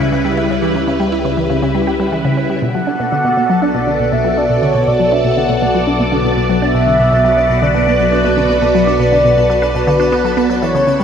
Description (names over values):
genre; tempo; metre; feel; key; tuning
ambient, sequencer-driven space music; 120 BPM; 4/4; straight; B minor; A4 = 440 Hz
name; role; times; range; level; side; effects
phased string machine; sustained chords; 0.0-11.0 s; C#3 to D5; -17 LUFS; equal; ensemble chorus, phaser
resonant blip pluck; riff; 0.0-11.0 s; B2 to G4; -17 LUFS; equal; phaser, ping-pong delay
analog drone; bass; 0.0-11.0 s; B1 to C#2; -22 LUFS; equal; chorus
pulsing gated texture; texture; 0.0-11.0 s; E4 to A5; -28 LUFS; equal; chorus, built-in reverb
mellow horn-like synth lead; melody; 2.6-11.0 s; B4 to F#5; -15 LUFS; equal; chorus, ping-pong delay
room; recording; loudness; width
wet lush hall reverb, RT60 2.8 s; none; -12 LUFS; side -8 dB against mid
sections
0.0-11.0 A section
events
fade-in on synth texture 0.0-11.0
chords
0.0 C#m7b5; 2.6 Bm7